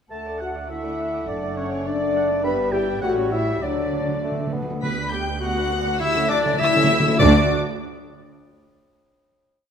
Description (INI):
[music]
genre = quick classical-period movement for symphony orchestra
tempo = 102 BPM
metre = 2/4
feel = straight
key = D major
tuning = A4 = 440 Hz
[part]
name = muted chamber violin section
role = melody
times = 0.1-7.5 s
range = C#5 to B6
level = -28 LUFS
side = left 2 dB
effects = none
[part]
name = bright clarinet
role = second line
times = 0.1-7.5 s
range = D4 to F#5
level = -31 LUFS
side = left 3 dB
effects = none
[part]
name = hollow concert flute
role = second line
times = 0.1-7.5 s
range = C#5 to B5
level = -30 LUFS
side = left 2 dB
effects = none
[part]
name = muted chamber violin section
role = second line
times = 0.1-7.5 s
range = C#5 to B5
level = -32 LUFS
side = left 5 dB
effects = none
[part]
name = warm oboe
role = second line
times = 0.1-7.5 s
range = C#5 to B5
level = -31 LUFS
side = equal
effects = none
[part]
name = muted chamber viola section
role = accompaniment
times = 0.1-7.5 s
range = F#3 to F#5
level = -30 LUFS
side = right 3 dB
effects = none
[part]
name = warm bassoon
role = accompaniment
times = 0.1-4.8 s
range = F#3 to B3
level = -31 LUFS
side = right 2 dB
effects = none
[part]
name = mellow French horn section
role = sustained chords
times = 0.1-7.5 s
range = C#4 to B4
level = -25 LUFS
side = left 3 dB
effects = none
[part]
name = muted chamber cello section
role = bass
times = 0.1-7.5 s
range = D2 to D3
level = -28 LUFS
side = right 2 dB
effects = none
[part]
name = muted studio double bass section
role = bass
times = 0.1-7.5 s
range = F#1 to D2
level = -28 LUFS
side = right 4 dB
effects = none
[part]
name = timpani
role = percussion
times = 3.6-7.5 s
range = D3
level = -26 LUFS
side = right 1 dB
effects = none
[sound]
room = wet scoring stage reverb, RT60 1.6 s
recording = none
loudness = -19 LUFS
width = side -7 dB against mid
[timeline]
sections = 0.1-4.8 A section; 4.8-7.2 coda; 7.2-8.4 final chord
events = timpani fill 3.6-4.8, 6.0-7.2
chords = 0.1 D; 1.3 D/F#; 2.4 Em/G; 3.0 A7; 3.6 D; 4.8 G/D; 6.0 A7/D; 7.2 D